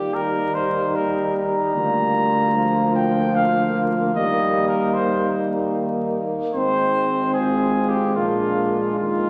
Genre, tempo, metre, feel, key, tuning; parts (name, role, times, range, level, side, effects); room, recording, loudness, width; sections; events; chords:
classical, brass quintet; 75 BPM; 3/4; straight; Eb major; A4 = 440 Hz
mellow trumpet; melody; 0.0-9.3 s; F4 to Bb5; -25 LUFS; equal
clear trombone; accompaniment; 0.0-9.3 s; F3 to Ab3; -27 LUFS; equal
mellow French horn; accompaniment; 0.0-9.3 s; Bb3 to C4; -28 LUFS; equal
mellow tuba; bass; 0.0-9.3 s; Ab1 to Eb2; -28 LUFS; equal
mellow flugelhorn; second line; 0.1-9.3 s; D4 to F4; -31 LUFS; equal
wet scoring stage reverb, RT60 2.0 s; vinyl crackle; -21 LUFS; mono
0.0-9.3 A section
0.0 Eb; 1.8 Bb/D; 4.2 Eb; 6.5 Ab; 8.2 Bb7